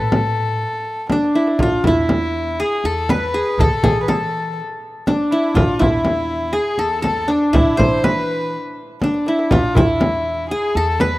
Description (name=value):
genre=Arabic maqam ensemble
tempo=121 BPM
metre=4/4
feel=straight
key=E maqam hijaz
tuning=A4 = 440 Hz
part: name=qanun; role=melody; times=0.0-11.2 s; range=D4 to C5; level=-19 LUFS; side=equal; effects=none
part: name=warm violin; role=second line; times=0.0-11.2 s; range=D4 to C5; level=-23 LUFS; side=left 2 dB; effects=none
part: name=upright bass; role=bass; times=0.0-11.2 s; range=D2 to E3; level=-24 LUFS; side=equal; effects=none
part: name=darbuka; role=percussion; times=0.1-11.1 s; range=none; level=-26 LUFS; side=right 1 dB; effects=none
part: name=frame drum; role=percussion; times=0.1-11.1 s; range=none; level=-19 LUFS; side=equal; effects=none
room=light reverb, small room ambience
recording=rough home demo mix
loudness=-15 LUFS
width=side -17 dB against mid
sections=0.0-1.6 A section; 1.6-11.2 B section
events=drum fill 1.1-1.6, 9.0-9.5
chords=none